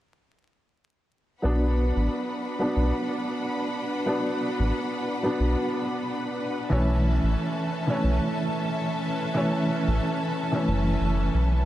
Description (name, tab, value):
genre	trip hop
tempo	91 BPM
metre	4/4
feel	swing 56% on 16ths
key	B minor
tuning	A4 = 439 Hz
part	felt-muted upright piano	accompaniment	1.4-11.7 s	E3 to D4	-26 LUFS	equal	harmonic tremolo, tape echo
part	clear studio string section	sustained chords	1.4-11.7 s	C#4 to B5	-32 LUFS	left 1 dB	none
part	round analog bass	bass	1.4-11.7 s	F#1 to B1	-23 LUFS	equal	none
part	backwards swelling texture	texture	3.3-11.7 s	B4	-41 LUFS	left 1 dB	built-in reverb, ensemble chorus
room	wet cathedral reverb, RT60 5.6 s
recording	dreamy mix soaked in reverb, vinyl crackle, lossy compression artefacts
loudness	-24 LUFS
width	side -14 dB against mid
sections	1.4-11.7 A section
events	none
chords	1.4 Bm; 6.7 A